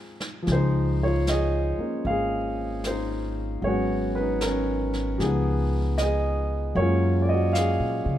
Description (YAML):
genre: jazz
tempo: 76 BPM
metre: 4/4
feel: swing 67% on 8ths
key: Db major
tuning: A4 = 437 Hz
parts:
  - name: warm concert grand piano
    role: accompaniment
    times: 0.0-8.2 s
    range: F3 to F5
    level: -25 LUFS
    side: equal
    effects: none
  - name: jazz brush drum kit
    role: drums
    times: 0.2-8.2 s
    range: brushed snare drum, hi-hat, snare drum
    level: -37 LUFS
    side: right 1 dB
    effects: none
  - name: upright bass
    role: bass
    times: 0.5-8.2 s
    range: Ab1 to Db3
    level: -26 LUFS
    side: equal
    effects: none
room: light reverb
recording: dark, warm production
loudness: -22 LUFS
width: side -12 dB against mid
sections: 0.5-8.2 A section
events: none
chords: 0.5 Dbadd9; 3.6 Abm11; 5.2 Db7; 6.8 Gbmaj9